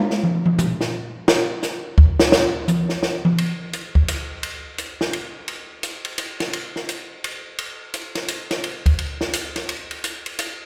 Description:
jazz; 171 BPM; 3/4; swing 63% on 8ths
compact cocktail drum kit; drums; 0.1-10.5 s; hi-hat, kick drum, ride cymbal, snare drum, toms; -22 LUFS; equal
moderate concert hall reverb, RT60 2.1 s; recorded in a church or concert hall; -22 LUFS; mono
0.0-3.4 A section; 3.4-10.7 B section
drum solo 0.0-3.4
| 0.23 0.58 0.93 | 1.28 1.63 1.98 | 2.33 2.68 3.03 | 3.38 3.73 4.08 | 4.43 4.78 5.13 | 5.48 5.83 6.18 | 6.53 6.88 7.23 | 7.58 7.93 8.28 | 8.63 8.98 9.33 | 9.69 10.04 10.38

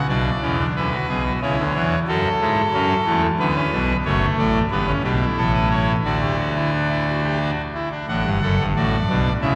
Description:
classical, baroque-style 3-part fugue for pipe organ; 90 BPM; 3/4; straight; D major; A4 = 444 Hz
pipe organ, trumpet; solo; 0.0-9.6 s; F#1 to F#5; -20 LUFS; equal
wet cathedral reverb, RT60 5.1 s; recorded in a church or concert hall, vinyl crackle; -21 LUFS; mono
0.1-8.1 A section; 8.1-9.6 B section
0.1 G#dim/B (rootless); 1.4 C#m; 2.1 F#m; 3.4 Bm/D; 4.1 D/F#; 4.7 Em/G; 5.4 A; 6.0 D
| 0.09 0.76 1.42 | 2.08 2.74 3.40 | 4.06 4.72 5.38 | 6.05 6.73 7.41 | 8.08 8.75 9.42

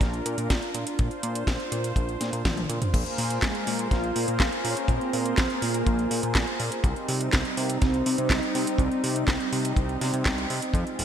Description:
italo disco; 123 BPM; 4/4; straight; A4 = 438 Hz
warm analog pad; sustained chords; 0.0-11.0 s; G3 to C5; -30 LUFS; right 1 dB; lush chorus
fat analog bass; bass; 0.0-11.0 s; F1 to C3; -30 LUFS; equal; digital delay
house drum kit; drums; 0.0-11.0 s; crash cymbal, handclaps, hi-hat, snare drum, toms; -29 LUFS; right 1 dB
kick drum; drums; 0.0-10.8 s; -25 LUFS; equal
mellow synth brass; melody; 3.4-9.5 s; Ab3 to F4; -30 LUFS; right 1 dB; chorus, digital delay
moderate lush hall reverb, RT60 2.4 s; bright 1980s-style digital production; -23 LUFS; side -9 dB against mid
0.0-2.9 A section; 2.9-11.0 B section
drum fill 2.5-2.9
0.0 Bb; 2.9 Bb5; 6.8 Cm
0.01 0.50 | 0.99 1.48 1.96 2.45 | 2.94 3.43 3.92 4.40 | 4.89 5.38 5.87 6.35 | 6.84 7.33 7.82 8.30 | 8.79 9.28 9.77 10.26 | 10.74

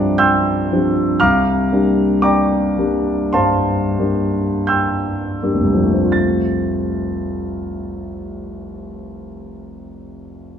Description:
classical, impressionist solo piano; 40-61 BPM; 4/4; rubato; F major; A4 = 442 Hz
warm concert grand piano; solo; 0.0-10.6 s; F1 to A6; -16 LUFS; equal
moderate recital hall reverb, RT60 1.4 s; dark, warm production; -15 LUFS; side -8 dB against mid
0.0-6.1 A section; 6.1-10.6 B section
slowing down 0.0-6.1
0.0 C11; 6.1 F
0.19 | 1.19 2.22 3.33 4.67 | 6.12 7.51 8.87 10.25

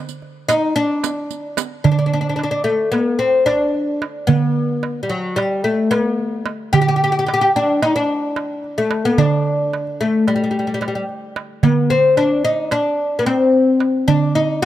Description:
Turkish makam ensemble; 221 BPM (eighths); 9/8; straight; D makam hicaz; A4 = 440 Hz
darbuka; percussion; 0.1-14.7 s; -19 LUFS; right 5 dB
riq; percussion; 0.1-1.7 s; -26 LUFS; right 15 dB
oud; melody; 0.5-14.7 s; F#3 to G4; -16 LUFS; left 2 dB
small room ambience; dry, close 1970s-style studio recording; -15 LUFS; side -13 dB against mid
0.0-1.8 A section; 1.8-14.7 B section
0.22 0.49 0.76 1.03 1.30 1.57 | 1.84 2.11 2.38 2.66 2.93 3.20 3.47 3.74 4.01 | 4.28 4.56 4.83 5.10 5.37 5.64 5.92 6.19 6.46 | 6.73 7.00 7.28 7.55 7.82 8.09 8.37 8.64 8.91 | 9.18 9.45 9.73 10.00 10.27 10.54 10.81 11.09 11.36 | 11.63 11.90 12.18 12.45 12.72 12.99 13.26 13.53 13.80 | 14.08 14.35 14.62

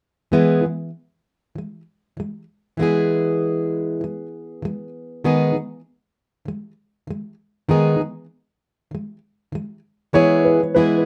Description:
acoustic pop; 98 BPM; 4/4; straight; E major; A4 = 440 Hz
fingerpicked plugged-in steel-string acoustic guitar; accompaniment; 0.3-11.1 s; D#3 to G#4; -21 LUFS; equal
dark upright piano; melody; 10.1-10.8 s; B4 to C#5; -20 LUFS; equal; tape echo
moderate studio reverb, RT60 0.5 s; rough home demo mix; -20 LUFS; mono
0.3-10.1 A section
0.3 E; 5.2 G#m/D#; 10.1 E
| 0.34 0.95 1.56 2.18 | 2.79 3.40 4.02 4.63 | 5.24 5.86 6.47 7.08 | 7.70 8.31 8.92 9.54 | 10.15 10.76

